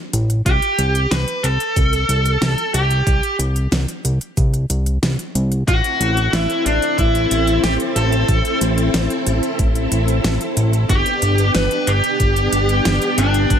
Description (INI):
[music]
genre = synthwave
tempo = 92 BPM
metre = 4/4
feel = straight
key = A dorian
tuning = A4 = 445 Hz
[part]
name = fat analog bass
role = bass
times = 0.1-13.6 s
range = G1 to C2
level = -18 LUFS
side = equal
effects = tube saturation
[part]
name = pop drum kit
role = drums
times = 0.1-13.6 s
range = hi-hat, snare drum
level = -23 LUFS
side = equal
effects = none
[part]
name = dark smooth lead guitar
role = melody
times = 0.5-13.6 s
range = D4 to B4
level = -19 LUFS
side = equal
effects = overdrive, ping-pong delay
[part]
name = electronic kick drum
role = drums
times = 0.5-13.6 s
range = none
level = -18 LUFS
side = equal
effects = none
[part]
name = string machine, full ensemble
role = sustained chords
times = 5.7-13.6 s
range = B3 to A4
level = -22 LUFS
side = equal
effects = ensemble chorus, sidechain pumping
[sound]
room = light reverb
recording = none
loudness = -15 LUFS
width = side -8 dB against mid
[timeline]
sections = 0.0-13.6 A section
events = none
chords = 0.5 C5; 5.7 Am; 10.9 G